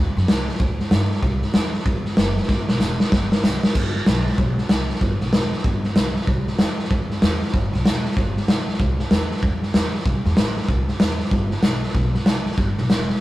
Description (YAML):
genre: rockabilly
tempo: 190 BPM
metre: 4/4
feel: swing 64% on 8ths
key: G major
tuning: A4 = 440 Hz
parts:
  - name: upright bass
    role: bass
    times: 0.0-13.1 s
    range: E1 to G2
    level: -24 LUFS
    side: equal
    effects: none
  - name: raw garage drum kit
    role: drums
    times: 0.2-13.2 s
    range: crash cymbal, hi-hat, kick drum, snare drum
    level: -19 LUFS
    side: equal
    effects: none
room: light reverb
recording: rough rehearsal-room recording, warm saturation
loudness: -18 LUFS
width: side -16 dB against mid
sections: 0.0-3.8 A section; 3.8-13.2 A section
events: drum fill 2.5-3.8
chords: none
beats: 0.28 0.60 0.92 | 1.23 1.54 1.86 2.17 | 2.49 2.81 3.12 3.44 | 3.75 4.07 4.38 4.70 | 5.01 5.33 5.64 5.96 | 6.27 6.59 6.90 7.22 | 7.54 7.85 8.17 8.48 | 8.80 9.11 9.43 9.74 | 10.06 10.37 10.69 11.01 | 11.32 11.64 11.95 12.27 | 12.58 12.90